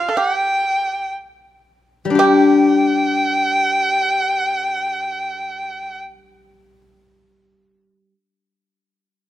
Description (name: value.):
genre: chinese traditional, Chinese chamber ensemble.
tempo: free time.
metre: none.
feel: none.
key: unclear.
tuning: A4 = 438 Hz.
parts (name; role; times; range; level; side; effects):
warm erhu; melody; 0.0-6.0 s; F5 to G5; -19 LUFS; right 1 dB; none.
pipa; second line; 0.0-6.0 s; G4 to A4; -20 LUFS; right 4 dB; none.
steel-string zither; accompaniment; 2.1-8.1 s; G3 to G4; -16 LUFS; left 3 dB; none.
room: light reverb.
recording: close, detailed microphones.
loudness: -15 LUFS.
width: side -13 dB against mid.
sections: 0.0-2.2 A section; 2.2-6.8 B section.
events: slowing down 0.0-2.2.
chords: none.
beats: free time.